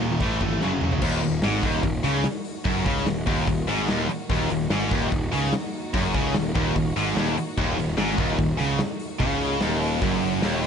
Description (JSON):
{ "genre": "heavy metal", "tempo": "147 BPM", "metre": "4/4", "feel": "straight", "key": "Eb phrygian", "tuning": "A4 = 440 Hz", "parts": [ { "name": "sludgy distorted guitar", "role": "riff", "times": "0.0-10.7 s", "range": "Eb2 to A3", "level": "-28 LUFS", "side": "right 10 dB", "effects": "overdrive" }, { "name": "tight distorted guitar", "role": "riff", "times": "0.0-10.7 s", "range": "Eb2 to A3", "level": "-28 LUFS", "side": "left 12 dB", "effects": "distortion" }, { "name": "tight distorted guitar", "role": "riff", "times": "0.0-10.7 s", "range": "Eb2 to A3", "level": "-28 LUFS", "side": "right 1 dB", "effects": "distortion" }, { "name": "fuzz picked electric bass", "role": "bass", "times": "0.0-10.7 s", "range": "Eb1 to Db2", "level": "-29 LUFS", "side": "equal", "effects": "overdrive" }, { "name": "big rock drum kit", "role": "drums", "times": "0.2-10.7 s", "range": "crash cymbal, hi-hat, kick drum, snare drum, toms", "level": "-28 LUFS", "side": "equal", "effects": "none" }, { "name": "clear studio string section", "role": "sustained chords", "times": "1.0-10.7 s", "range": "Eb3 to Gb4", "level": "-36 LUFS", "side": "right 1 dB", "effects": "none" } ], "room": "little or no reverb", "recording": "nothing above 10.5 kHz", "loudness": "-21 LUFS", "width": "side -7 dB against mid", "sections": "0.0-1.0 A section; 1.0-10.7 B section", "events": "drum fill 0.6-1.0", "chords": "0.2 A5; 0.6 Gb5; 1.0 Ebm", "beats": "0.21 0.62 | 1.03 1.44 1.84 2.25 | 2.66 3.07 3.48 3.88 | 4.29 4.70 5.11 5.52 | 5.93 6.34 6.75 7.16 | 7.57 7.98 8.39 8.79 | 9.21 9.62 10.03 10.44" }